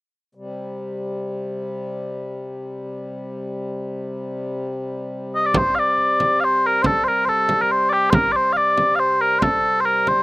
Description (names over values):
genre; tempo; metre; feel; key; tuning
medieval dance; 139 BPM; 3/4; straight; unclear; A4 = 440 Hz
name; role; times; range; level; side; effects
pedal harmonium; drone; 0.3-10.2 s; C3 to G3; -28 LUFS; left 1 dB; none
mellow small bagpipes; melody; 5.4-10.2 s; G4 to F5; -16 LUFS; equal; none
frame drum; percussion; 5.5-10.2 s; none; -21 LUFS; right 1 dB; none
room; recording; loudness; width
light reverb; recorded outdoors, with no room sound; -18 LUFS; side -20 dB against mid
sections
0.4-5.5 A section; 5.5-10.2 B section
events
none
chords
none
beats
| 0.37 0.80 1.23 | 1.66 2.10 2.53 | 2.96 3.39 3.82 | 4.25 4.68 5.12 | 5.55 5.98 6.41 | 6.84 7.27 7.70 | 8.13 8.56 8.99 | 9.43 9.86